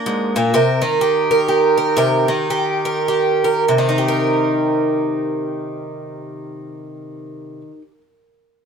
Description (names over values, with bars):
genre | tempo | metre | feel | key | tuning
folk, solo fingerstyle acoustic guitar | 94-129 BPM | 3/4 | swing 62% on 8ths | C minor | A4 = 437 Hz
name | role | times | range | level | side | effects
picked twelve-string acoustic guitar | solo | 0.0-8.0 s | Ab2 to Bb4 | -16 LUFS | right 1 dB | none
room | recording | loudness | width
light reverb | band playing live in one room | -15 LUFS | side -6 dB against mid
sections
0.5-3.7 A section; 3.7-7.5 B section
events
slowing down 0.5-3.7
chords
0.0 Bb7; 0.5 Cm7